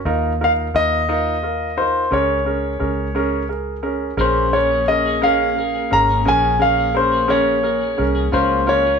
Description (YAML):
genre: pop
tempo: 58 BPM (dotted quarters)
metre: 6/8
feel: straight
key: unclear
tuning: A4 = 441 Hz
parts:
  - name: warm baby grand piano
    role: accompaniment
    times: 0.1-8.9 s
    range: Db4 to Bb4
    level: -22 LUFS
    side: right 2 dB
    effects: none
  - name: vintage muted fingered electric bass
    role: bass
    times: 0.1-9.0 s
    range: Ab1 to Eb2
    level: -25 LUFS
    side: equal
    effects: none
  - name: clear concert grand piano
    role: melody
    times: 0.4-9.0 s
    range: C5 to Bb5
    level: -17 LUFS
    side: left 2 dB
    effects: none
  - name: twelve-string electric guitar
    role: arpeggios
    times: 4.2-9.0 s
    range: Bb2 to Ab4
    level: -26 LUFS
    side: left 4 dB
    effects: spring reverb
room: moderate large studio reverb, RT60 1.2 s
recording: band playing live in one room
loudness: -16 LUFS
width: side -6 dB against mid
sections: 0.0-4.2 A section; 4.2-9.0 B section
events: none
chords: 0.1 Ebsus2; 2.1 Bbm7/Db; 4.2 Bbm7